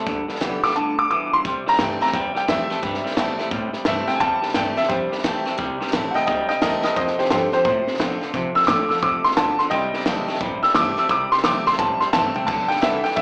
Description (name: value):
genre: rockabilly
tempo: 174 BPM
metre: 4/4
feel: swing 64% on 8ths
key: C major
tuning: A4 = 441 Hz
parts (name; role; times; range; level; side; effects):
- clear upright piano; melody; 0.0-13.2 s; G4 to E6; -23 LUFS; equal; plate reverb, slapback echo
- picked steel-string acoustic guitar; accompaniment; 0.0-13.2 s; F2 to G4; -32 LUFS; equal; plate reverb
- twangy electric guitar; riff; 0.0-13.2 s; F2 to A3; -29 LUFS; equal; slapback echo
- upright bass; bass; 0.1-13.2 s; G1 to C3; -33 LUFS; equal; none
- compact cocktail drum kit; drums; 0.1-13.2 s; crash cymbal, hi-hat, kick drum, snare drum, toms; -29 LUFS; equal; none
room: moderate club reverb, RT60 0.5 s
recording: live gig heard through the venue's PA, club reverb, small speaker sound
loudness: -21 LUFS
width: mono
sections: 0.0-1.4 A section; 1.4-13.2 B section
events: upright piano solo 1.4-13.2; drum fill 6.8, 12.1-12.5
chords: 0.1 G; 1.4 C; 7.0 F; 9.7 C; 12.5 G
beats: | 0.07 0.41 0.76 1.10 | 1.45 1.79 2.14 2.48 | 2.83 3.17 3.52 3.86 | 4.21 4.55 4.89 5.24 | 5.58 5.93 6.27 6.62 | 6.96 7.31 7.65 8.00 | 8.34 8.69 9.03 9.38 | 9.72 10.06 10.41 10.75 | 11.10 11.44 11.79 12.13 | 12.48 12.82 13.17